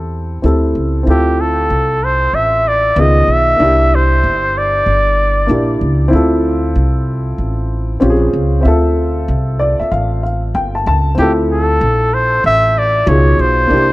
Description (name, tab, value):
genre	hip hop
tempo	95 BPM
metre	4/4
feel	swing 65% on 16ths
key	D minor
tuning	A4 = 440 Hz
part	dark upright piano	accompaniment	0.0-13.9 s	B2 to A5	-17 LUFS	equal	none
part	upright bass	bass	0.0-13.9 s	G1 to E2	-15 LUFS	equal	none
part	trumpet with bucket mute	melody	1.1-5.8, 11.2-13.9 s	G4 to E5	-13 LUFS	equal	analog delay
room	light reverb, small room ambience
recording	none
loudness	-11 LUFS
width	side -18 dB against mid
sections	0.0-11.2 A section; 11.2-13.9 A section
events	upright piano fill 9.3-11.2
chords	0.0 Am7; 1.1 Dm7; 3.0 C#9; 3.6 C9; 6.1 Dm7; 8.0 Bbm7; 8.6 Dm9; 11.2 Dm7; 13.1 C#9